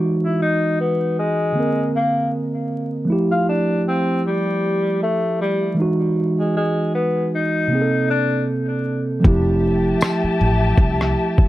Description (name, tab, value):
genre	lo-fi hip hop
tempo	78 BPM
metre	4/4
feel	swing 56% on 16ths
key	F major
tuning	A4 = 439 Hz
part	mellow tine electric piano	accompaniment	0.0-11.5 s	C3 to Bb4	-20 LUFS	right 1 dB	cassette tape, low-pass filter
part	mellow tenor saxophone	melody	0.2-8.4 s	G3 to F4	-22 LUFS	left 2 dB	low-pass filter, analog delay
part	dark studio string section	sustained chords	9.2-11.5 s	G4 to A5	-24 LUFS	left 4 dB	low-pass filter
part	upright bass	bass	9.2-11.1 s	F1 to C2	-20 LUFS	equal	none
part	lo-fi sampler-style drum kit	drums	9.2-11.5 s	kick drum, rim click	-15 LUFS	equal	none
part	tambourine	percussion	10.0-10.2 s	none	-37 LUFS	left 6 dB	none
room	light reverb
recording	vinyl crackle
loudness	-17 LUFS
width	side -15 dB against mid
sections	0.0-9.2 A section; 9.2-11.5 B section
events	hi-hats muted 9.2-11.5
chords	0.0 Emaj9; 1.6 Bbadd9; 3.1 Fmaj9; 5.8 Emaj9; 7.7 Bbsus2; 9.2 Fmaj9